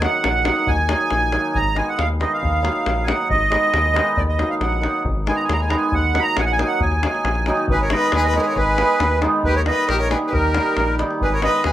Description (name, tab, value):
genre	balkan folk, Balkan wedding band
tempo	137 BPM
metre	2/4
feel	straight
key	Eb minor, G# harmonic minor from 7.7 s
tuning	A4 = 439 Hz
part	accordion	melody	0.0-11.7 s	A#4 to Cb6	-21 LUFS	right 2 dB	light tremolo tuning, plate reverb
part	hammered dulcimer	accompaniment	0.0-11.7 s	Eb3 to Eb4	-22 LUFS	right 1 dB	plate reverb
part	round analog bass	bass	0.0-11.7 s	Ab1 to Eb2	-22 LUFS	left 1 dB	none
part	davul	percussion	0.0-11.7 s	none	-26 LUFS	left 3 dB	none
part	rich violin	second line	7.7-11.7 s	G4 to B4	-24 LUFS	left 2 dB	plate reverb
room	moderate small room ambience, RT60 0.5 s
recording	rough home demo mix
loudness	-17 LUFS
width	side -12 dB against mid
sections	0.0-7.7 A section; 7.7-11.7 B section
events	accordion solo 0.0-7.7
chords	0.0 Ebm; 1.5 Abm; 2.4 Ebm; 3.3 Abm; 4.2 Ebm; 5.1 Abm; 5.9 Ebm; 7.7 G#m; 9.4 D#; 11.2 G#m